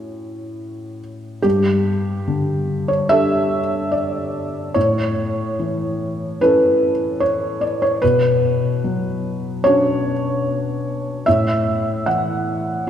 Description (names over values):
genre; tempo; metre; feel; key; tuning
neoclassical minimalist piano; 74 BPM; 4/4; rubato; unclear; A4 = 440 Hz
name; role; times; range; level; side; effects
felt-muted upright piano; solo; 0.0-12.9 s; G2 to F#5; -17 LUFS; equal; none
room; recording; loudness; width
wet church reverb, RT60 2.7 s; recorded in a church or concert hall; -17 LUFS; side -9 dB against mid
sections
0.0-1.4 A section; 1.4-12.9 A section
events
none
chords
0.0 F#m7/A; 1.4 Gsus2; 4.8 A; 8.0 Bmadd9; 11.3 F#m7/A